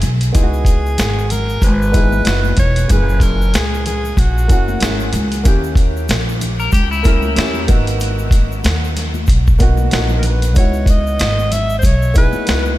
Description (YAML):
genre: hip hop, jazz-hop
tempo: 94 BPM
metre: 4/4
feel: swing 58% on 16ths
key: C# dorian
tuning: A4 = 438 Hz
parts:
  - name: dark upright piano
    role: accompaniment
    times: 0.0-12.8 s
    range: A#2 to A#4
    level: -23 LUFS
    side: right 1 dB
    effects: wide subtle chorus
  - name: upright bass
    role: bass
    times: 0.0-12.8 s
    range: E1 to E2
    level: -17 LUFS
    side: equal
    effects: none
  - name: boom bap sampler-style drum kit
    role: drums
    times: 0.0-12.7 s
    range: hi-hat, kick drum, snare drum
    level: -15 LUFS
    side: equal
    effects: none
  - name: congas and tube shaker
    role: percussion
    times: 0.0-12.8 s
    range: none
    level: -30 LUFS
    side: left 6 dB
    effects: none
  - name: warm alto saxophone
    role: melody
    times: 0.4-5.1, 10.2-12.8 s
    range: F#4 to E5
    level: -22 LUFS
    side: equal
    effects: ping-pong delay
  - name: clean electric guitar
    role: second line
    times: 6.6-7.6 s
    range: E4 to A#4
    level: -24 LUFS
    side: left 4 dB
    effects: wide subtle chorus, ping-pong delay
room: little or no reverb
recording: none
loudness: -12 LUFS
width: side -16 dB against mid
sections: 0.3-12.8 A section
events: none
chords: 0.3 C#m11; 2.9 F#9; 5.5 D#7b9; 7.7 G#m9; 10.6 C#m11